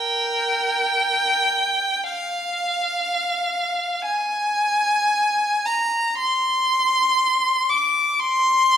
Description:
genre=classical, free, expressive piece for unaccompanied violin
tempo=free time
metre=none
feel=none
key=unclear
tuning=A4 = 440 Hz
part: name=rich violin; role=solo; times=0.0-8.8 s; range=Bb4 to D6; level=-18 LUFS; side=equal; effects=none
room=wet recital hall reverb, RT60 1.4 s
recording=recorded in a church or concert hall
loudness=-18 LUFS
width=side -9 dB against mid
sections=0.0-8.8 A section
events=none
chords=none

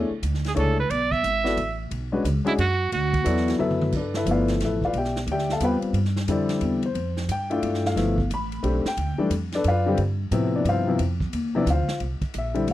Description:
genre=modal jazz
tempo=178 BPM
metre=3/4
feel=swing 64% on 8ths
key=E mixolydian, G mixolydian from 3.9 s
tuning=A4 = 440 Hz
part: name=clear grand piano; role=accompaniment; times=0.0-12.7 s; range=C3 to B5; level=-24 LUFS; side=left 3 dB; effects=none
part: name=upright bass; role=bass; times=0.0-12.7 s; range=G1 to A2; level=-25 LUFS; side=right 1 dB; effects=none
part: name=swinging big-band drum kit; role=drums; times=0.2-12.7 s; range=crash cymbal, hi-hat, kick drum, ride cymbal, snare drum, toms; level=-34 LUFS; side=right 1 dB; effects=none
part: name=clear trumpet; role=melody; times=0.5-3.6 s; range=E4 to E5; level=-24 LUFS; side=right 4 dB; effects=slapback echo
room=little or no reverb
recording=dry, close 1970s-style studio recording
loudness=-22 LUFS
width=side -14 dB against mid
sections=0.0-3.9 A section; 3.9-12.0 B section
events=drum fill 3.6-3.9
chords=0.0 E13; 2.9 D; 3.9 G13; 5.9 Fsus2; 8.0 G13; 10.0 Fsus2/G; 12.0 C7

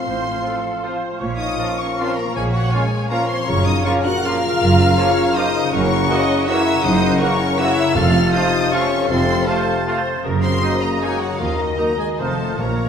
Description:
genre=classical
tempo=143-173 BPM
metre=3/4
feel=rubato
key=unclear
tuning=A4 = 440 Hz
part: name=warm symphonic violin section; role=melody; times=0.0-12.9 s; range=Eb5 to Gb6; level=-26 LUFS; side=left 4 dB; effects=none
part: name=clear oboe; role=second line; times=0.0-12.9 s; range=Db5 to Gb5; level=-28 LUFS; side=right 3 dB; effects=none
part: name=dark clarinet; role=second line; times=0.0-12.9 s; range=Fb4 to Gb4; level=-29 LUFS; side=left 3 dB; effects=none
part: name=small flute group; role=second line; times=0.0-12.9 s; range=Bb5 to A6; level=-29 LUFS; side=left 2 dB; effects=none
part: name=warm symphonic violin section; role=second line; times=0.0-12.9 s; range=Eb4 to Gb5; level=-27 LUFS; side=left 3 dB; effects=none
part: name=mellow bassoon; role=accompaniment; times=0.0-12.9 s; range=C3 to F3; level=-27 LUFS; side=equal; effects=none
part: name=rich symphonic viola section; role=accompaniment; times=0.0-12.9 s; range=A4 to Eb5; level=-28 LUFS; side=right 2 dB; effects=none
part: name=mellow French horn section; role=sustained chords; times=0.0-12.9 s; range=Eb3 to Gb4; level=-25 LUFS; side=left 3 dB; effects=none
part: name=concert harp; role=arpeggios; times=0.0-12.9 s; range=F2 to Db6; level=-27 LUFS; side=left 6 dB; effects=none
part: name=warm symphonic cello section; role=bass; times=0.0-12.9 s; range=Eb2 to Bb2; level=-26 LUFS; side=right 3 dB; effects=none
part: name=dark symphonic double bass section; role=bass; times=0.1-12.9 s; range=F1 to Eb2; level=-24 LUFS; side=right 3 dB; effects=none
part: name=clear trombone section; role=sustained chords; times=0.4-12.3 s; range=Fb3 to Db4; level=-30 LUFS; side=right 3 dB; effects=none
part: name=clear trumpet section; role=stabs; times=0.4-12.3 s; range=Eb4 to Gb4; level=-29 LUFS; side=right 2 dB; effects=none
part: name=timpani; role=percussion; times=7.9-8.5, 12.6-12.9 s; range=F2 to Bb2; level=-27 LUFS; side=equal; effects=none
room=wet concert hall reverb, RT60 1.9 s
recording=none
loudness=-16 LUFS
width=side -7 dB against mid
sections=0.0-12.9 A section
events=none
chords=0.0 F/A; 1.2 Bbm; 3.5 Gbmaj7; 5.7 Gb7; 8.0 F; 10.2 Gb6; 11.4 Ebm; 12.2 F7

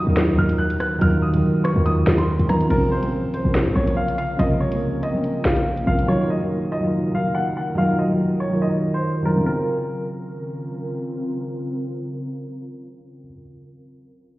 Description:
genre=hip hop, drill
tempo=142 BPM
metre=4/4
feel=half-time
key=Bb minor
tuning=A4 = 440 Hz
part: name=clear upright piano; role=melody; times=0.0-10.7 s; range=Bb4 to Gb6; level=-26 LUFS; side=equal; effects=low-pass filter, tape echo
part: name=felt-muted upright piano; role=accompaniment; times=0.0-14.4 s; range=C3 to Bb4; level=-22 LUFS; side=equal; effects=low-pass filter
part: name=ethereal airy pad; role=sustained chords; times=0.0-13.3 s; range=Db3 to Bb4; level=-28 LUFS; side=equal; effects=ensemble chorus, built-in reverb
part: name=short 808-style bass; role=bass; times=0.0-6.1 s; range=Bb1 to Eb3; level=-22 LUFS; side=equal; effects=none
part: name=drill drum kit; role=drums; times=0.2-6.1 s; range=crash cymbal, hi-hat, rim click, snare drum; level=-24 LUFS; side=equal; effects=vintage 12-bit sampler grit
room=moderate lush hall reverb, RT60 1.8 s, digital ambience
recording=heard muffled through a wall, stone room reverb, EQ, low-pass filter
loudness=-19 LUFS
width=side -18 dB against mid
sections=0.0-2.7 A section; 2.7-9.5 B section; 9.5-12.8 C section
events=filter sweep 2.7-9.5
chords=0.0 Ebmadd9; 2.7 Bbmadd9; 6.1 Ebmadd9; 9.5 Bbmadd9

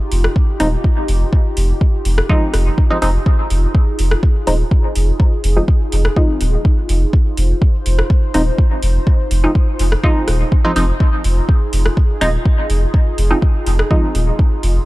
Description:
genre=dub techno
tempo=124 BPM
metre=4/4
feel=straight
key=F minor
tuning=A4 = 439 Hz
part: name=airy breathy pad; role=sustained chords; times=0.0-14.9 s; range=Eb4 to C5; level=-25 LUFS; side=equal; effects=chorus, sidechain pumping
part: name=filtered dub chord stab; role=stabs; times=0.0-14.9 s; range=F3 to Eb4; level=-21 LUFS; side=equal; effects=chorus, phaser, sidechain pumping, dub echo
part: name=soft dub sub bass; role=bass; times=0.1-14.8 s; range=Eb1 to F1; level=-15 LUFS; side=equal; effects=sidechain pumping
part: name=deep house drum kit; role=drums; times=0.1-14.7 s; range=hi-hat, rim click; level=-25 LUFS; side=equal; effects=overdrive
part: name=electronic kick drum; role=drums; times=0.4-14.5 s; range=none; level=-13 LUFS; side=equal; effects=overdrive
room=digital ambience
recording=dark, warm production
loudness=-13 LUFS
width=side -19 dB against mid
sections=0.0-3.3 A section; 3.3-14.9 A section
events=none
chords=0.0 Fm7

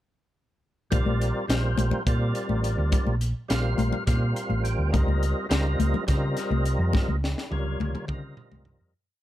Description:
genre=electric jazz fusion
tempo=209 BPM (eighths)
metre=7/8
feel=straight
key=unclear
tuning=A4 = 441 Hz
part: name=percussive tonewheel organ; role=accompaniment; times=0.9-8.9 s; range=C3 to G5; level=-30 LUFS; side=equal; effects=slow rotary speaker, overdrive, chorus vibrato
part: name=hollow-body short-scale fingered electric bass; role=bass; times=0.9-8.9 s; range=A1 to Db3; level=-25 LUFS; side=equal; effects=none
part: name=crisp fusion drum kit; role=drums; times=0.9-8.8 s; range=hi-hat, kick drum, snare drum, toms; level=-28 LUFS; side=equal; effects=none
part: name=congas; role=percussion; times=0.9-8.6 s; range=none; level=-30 LUFS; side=left 5 dB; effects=none
room=little or no reverb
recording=dark, warm production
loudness=-23 LUFS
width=side -14 dB against mid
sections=0.9-8.9 groove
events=tonewheel organ fill 4.1-4.9; fade-out 6.9-8.9; drum fill 6.9-8.9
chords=0.9 Bbmaj9; 4.9 Dbmaj9

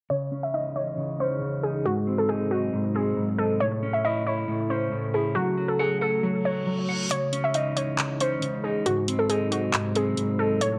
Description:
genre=hip hop, trap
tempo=137 BPM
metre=4/4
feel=half-time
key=C# harmonic minor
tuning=A4 = 440 Hz
part: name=warbly dusty pluck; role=melody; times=0.1-10.8 s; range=F#4 to E5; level=-29 LUFS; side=equal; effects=chorus, low-pass filter, tape echo
part: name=mellow electric guitar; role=accompaniment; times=0.1-10.8 s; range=G#2 to F#5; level=-30 LUFS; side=equal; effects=spring reverb, low-pass filter
part: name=dark analog pad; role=sustained chords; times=0.6-10.8 s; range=B#2 to A4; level=-35 LUFS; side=equal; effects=chorus, low-pass filter
part: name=reverse cymbal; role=sound effects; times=6.5-7.1 s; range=none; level=-37 LUFS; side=equal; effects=none
part: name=trap drum kit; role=drums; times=7.1-10.7 s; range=handclaps, hi-hat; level=-30 LUFS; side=equal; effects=vintage 12-bit sampler grit
room=light reverb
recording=dark, warm production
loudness=-26 LUFS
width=mono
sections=0.1-7.1 A section; 7.1-10.8 B section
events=filter sweep 0.1-7.1; reverse cymbal 6.6-7.1; kick muted 7.1-10.8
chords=0.1 C#madd9; 1.9 G#7; 3.6 A; 5.4 F#m; 7.1 C#madd9; 8.9 G#7

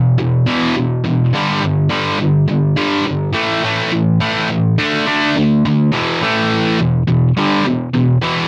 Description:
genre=rock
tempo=105 BPM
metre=4/4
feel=straight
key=unclear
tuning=A4 = 443 Hz
part: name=sludgy distorted guitar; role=solo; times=0.0-8.5 s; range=E2 to D4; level=-15 LUFS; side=equal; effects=overdrive
room=moderate booth ambience, RT60 0.2 s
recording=dry, close 1970s-style studio recording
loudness=-15 LUFS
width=mono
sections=0.0-5.9 A section; 5.9-8.5 B section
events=none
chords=0.0 E5; 1.3 G5; 3.4 A5; 4.8 D5; 5.9 E5; 6.2 A5; 6.8 Em

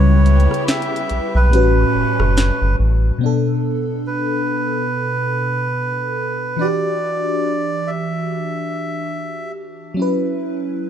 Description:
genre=contemporary R&B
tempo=71 BPM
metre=4/4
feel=swing 58% on 16ths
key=B minor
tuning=A4 = 441 Hz
part: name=melodica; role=melody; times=0.0-9.5 s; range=B4 to E5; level=-23 LUFS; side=right 2 dB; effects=ping-pong delay
part: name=FM electric piano with soft pad layer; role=accompaniment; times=0.0-10.9 s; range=A2 to B4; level=-20 LUFS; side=left 1 dB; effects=chorus, phaser
part: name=muted studio string section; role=sustained chords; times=0.0-3.2 s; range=C#3 to G4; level=-28 LUFS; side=left 2 dB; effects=none
part: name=rubbery square bass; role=bass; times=0.0-3.1 s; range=F#1 to C#2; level=-14 LUFS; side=equal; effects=none
part: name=smooth R&B drum kit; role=drums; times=0.3-2.6 s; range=hi-hat, rim click, snare drum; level=-21 LUFS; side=equal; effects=none
room=moderate studio reverb, RT60 0.6 s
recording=dark, warm production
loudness=-16 LUFS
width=side -9 dB against mid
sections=0.0-3.2 A section; 3.2-10.9 B section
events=break 0.0-3.2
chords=0.0 C#m7b5; 1.5 A13; 3.2 Bm7; 6.6 Em9; 10.0 F#7sus4

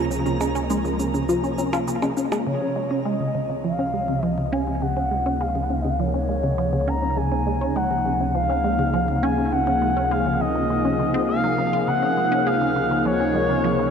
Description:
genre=ambient, sequencer-driven space music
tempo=102 BPM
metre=4/4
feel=straight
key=Db major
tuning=A4 = 441 Hz
part: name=sweeping resonant pad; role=sustained chords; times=0.0-13.9 s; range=C3 to Ab4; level=-25 LUFS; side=left 1 dB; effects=chorus
part: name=warbly dusty pluck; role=arpeggios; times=0.0-2.5 s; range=Db3 to Ab4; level=-28 LUFS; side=moving between left 3 dB and right 5 dB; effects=chorus, auto-pan, analog delay
part: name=resonant blip pluck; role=riff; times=0.0-13.9 s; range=Db3 to F4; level=-26 LUFS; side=right 1 dB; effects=chorus, phaser, analog delay
part: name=fat analog bass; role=bass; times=0.0-13.9 s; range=Db2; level=-30 LUFS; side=equal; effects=none
part: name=twinkling granular texture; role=texture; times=0.0-2.5 s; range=Ab4 to Bb5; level=-36 LUFS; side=right 2 dB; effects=built-in reverb
part: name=shaker and percussion blips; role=percussion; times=0.1-2.4 s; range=none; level=-35 LUFS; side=right 4 dB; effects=analog delay
part: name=expressive portamento lead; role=melody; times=2.5-13.9 s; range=Db5 to Bb5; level=-24 LUFS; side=left 1 dB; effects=chorus, analog delay
room=wet huge ambient reverb, RT60 8.8 s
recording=in a vast, echoing space, cassette tape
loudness=-20 LUFS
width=side -7 dB against mid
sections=0.0-2.5 A section; 2.5-13.9 B section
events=none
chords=0.0 Db

